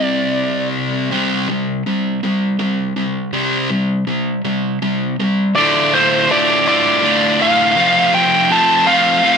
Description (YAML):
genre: rock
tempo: 54 BPM (dotted quarters)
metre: 6/8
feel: straight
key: unclear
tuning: A4 = 441 Hz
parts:
  - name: bluesy overdriven lead guitar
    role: melody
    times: 0.0-0.7, 5.6-9.4 s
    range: C5 to A5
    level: -14 LUFS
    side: equal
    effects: distortion
  - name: fuzz guitar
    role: riff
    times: 0.0-9.4 s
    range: D2 to F4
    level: -15 LUFS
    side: equal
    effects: distortion
room: light reverb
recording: none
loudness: -13 LUFS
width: side -6 dB against mid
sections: 0.0-1.1 A section; 1.1-5.6 B section; 5.6-9.4 C section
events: half time 0.0-1.1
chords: 0.0 C5; 5.6 Dm; 7.8 F